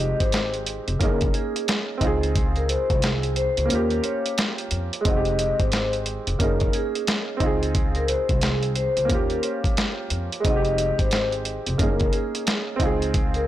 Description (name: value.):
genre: hip hop, boom-bap hip-hop.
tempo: 89 BPM.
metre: 4/4.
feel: swing 62% on 16ths.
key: F minor.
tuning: A4 = 440 Hz.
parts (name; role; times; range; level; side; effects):
vibraphone with soft mallets; melody; 0.0-13.5 s; Ab4 to Eb5; -27 LUFS; left 3 dB; high-pass filter, low-pass filter, ping-pong delay.
warm upright piano; accompaniment; 0.0-13.5 s; Ab3 to Ab4; -28 LUFS; right 4 dB; high-pass filter, low-pass filter.
upright bass; bass; 0.0-13.5 s; F1 to F2; -27 LUFS; equal; transformer saturation.
dusty soul sampler-style drum kit; drums; 0.2-13.5 s; hi-hat, kick drum, snare drum; -24 LUFS; equal; overdrive.
room: small room ambience.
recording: blown-out, overdriven recording, overdrive.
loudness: -21 LUFS.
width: side -13 dB against mid.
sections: 0.0-13.5 A section.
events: kick muted 3.7-5.1.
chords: 0.0 Fm7; 1.0 Gb69; 2.0 Dbmaj7; 3.7 Eb9; 5.1 Fm7; 6.4 Gb69; 7.4 Dbmaj7; 9.1 Eb9; 10.4 Fm7; 11.8 Gb69; 12.8 Dbmaj7.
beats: 0.33 1.01 1.68 | 2.35 3.03 3.70 4.38 | 5.05 5.73 6.40 7.07 | 7.75 8.42 9.10 9.77 | 10.45 11.12 11.79 12.47 | 13.14.